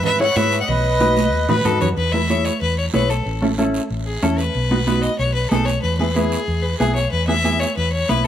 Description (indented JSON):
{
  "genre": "latin, cumbia",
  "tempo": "186 BPM",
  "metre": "4/4",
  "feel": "straight",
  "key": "E major",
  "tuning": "A4 = 440 Hz",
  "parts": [
    { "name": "bright fiddle", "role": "melody", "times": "0.0-8.3 s", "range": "G#4 to F#5", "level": "-22 LUFS", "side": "left 3 dB", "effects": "none" },
    { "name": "accordion", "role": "second line", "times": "0.0-1.7 s", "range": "B4 to D#5", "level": "-22 LUFS", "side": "right 4 dB", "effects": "none" },
    { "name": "hollow-body short-scale fingered electric bass", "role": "bass", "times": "0.0-8.3 s", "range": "A1 to A2", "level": "-22 LUFS", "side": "equal", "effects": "none" },
    { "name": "congas", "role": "percussion", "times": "0.0-8.3 s", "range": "none", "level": "-26 LUFS", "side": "right 5 dB", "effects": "none" },
    { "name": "guiro", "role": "percussion", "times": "0.0-8.3 s", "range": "none", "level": "-34 LUFS", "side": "right 6 dB", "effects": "none" },
    { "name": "mellow electric guitar", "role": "accompaniment", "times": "0.2-8.3 s", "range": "B3 to C#5", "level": "-22 LUFS", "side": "left 1 dB", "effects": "warbly pitch drift" }
  ],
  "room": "light reverb",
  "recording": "none",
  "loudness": "-16 LUFS",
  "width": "side -10 dB against mid",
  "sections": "0.0-2.0 A section; 2.0-8.3 B section",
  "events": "drum fill 1.2-2.0",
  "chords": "0.0 E; 0.7 B; 2.0 E; 3.3 A; 4.5 B; 5.8 E"
}